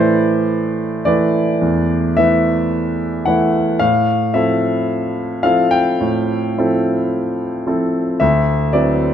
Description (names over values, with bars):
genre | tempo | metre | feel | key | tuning
classical, impressionist solo piano | 55 BPM | 4/4 | rubato | A minor | A4 = 442 Hz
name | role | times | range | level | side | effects
clear concert grand piano | solo | 0.0-9.1 s | D2 to G5 | -14 LUFS | equal | none
room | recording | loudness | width
moderate concert hall reverb, RT60 1.9 s | close, detailed microphones | -14 LUFS | side -9 dB against mid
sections
0.0-9.1 A section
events
none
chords
0.0 Amadd9; 3.8 Fmaj9/A; 8.2 D13